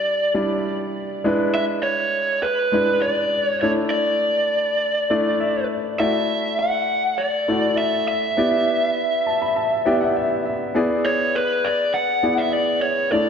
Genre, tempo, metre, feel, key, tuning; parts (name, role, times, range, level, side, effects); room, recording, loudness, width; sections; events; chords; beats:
pop; 101 BPM; 4/4; straight; A4 = 440 Hz
lead guitar through a small cranked amp; melody; 0.0-13.3 s; B4 to F#5; -20 LUFS; equal; overdrive, digital delay
warm baby grand piano; accompaniment; 0.0-13.3 s; G3 to B5; -23 LUFS; equal
wet lush hall reverb, RT60 2.0 s, studio reverb; dark, warm production; -18 LUFS; side -7 dB against mid
0.0-13.3 A section
grand piano fill 5.1-6.0, 9.0-10.8
0.0 Em7; 1.2 E7; 3.6 Asus4; 6.0 Dadd9; 8.4 Em7; 10.8 E7
0.06 0.65 | 1.25 1.84 2.44 3.03 | 3.62 4.22 4.81 5.41 | 6.00 6.59 7.19 7.78 | 8.38 8.97 9.56 10.16 | 10.75 11.35 11.94 12.54 | 13.13